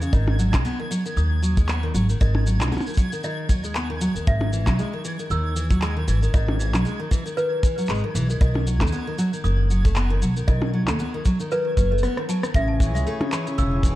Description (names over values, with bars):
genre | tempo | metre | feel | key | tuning
folktronica | 116 BPM | 4/4 | swing 56% on 16ths | E major | A4 = 440 Hz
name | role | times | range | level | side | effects
picked steel-string acoustic guitar | arpeggios | 0.0-14.0 s | C#3 to B3 | -27 LUFS | equal | digital delay
upright bass | bass | 0.0-14.0 s | E1 to D#2 | -22 LUFS | equal | none
electronic shaker, percussion blips, handclaps and rim click | drums | 0.0-14.0 s | none | -30 LUFS | equal | none
twinkling granular texture | texture | 0.0-12.6 s | G#6 | -38 LUFS | right 2 dB | built-in reverb
toy piano | second line | 0.1-13.8 s | B4 to E6 | -29 LUFS | equal | digital delay
kick drum | drums | 0.1-14.0 s | none | -20 LUFS | equal | none
pedal harmonium | sustained chords | 12.8-14.0 s | E4 to C#5 | -32 LUFS | left 1 dB | none
room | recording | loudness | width
little or no reverb | dark, warm production | -20 LUFS | side -15 dB against mid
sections
0.0-12.5 A section; 12.5-14.0 B section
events
break 12.0-12.5; drum fill 12.0-12.5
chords
0.1 G#m7; 4.3 Emaj7/G#; 8.4 B; 12.5 Amaj7